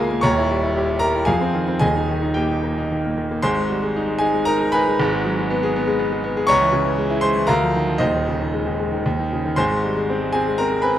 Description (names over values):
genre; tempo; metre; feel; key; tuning
classical, virtuoso piano study; 107-122 BPM; 3/4; rubato; Ab major; A4 = 440 Hz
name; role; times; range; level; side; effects
clear concert grand piano; solo; 0.0-11.0 s; Eb1 to D6; -18 LUFS; equal; none
room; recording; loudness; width
light reverb; close, detailed microphones; -18 LUFS; side -11 dB against mid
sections
0.0-3.4 A section; 3.4-11.0 B section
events
none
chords
0.2 Eb7b9; 1.3 Fm7; 1.8 Eb; 3.4 Ab; 5.0 Abm7; 6.5 Bbm7b5/Db; 7.5 Bb/D; 8.0 Ab/Eb; 9.0 Cm/Eb; 9.6 Ab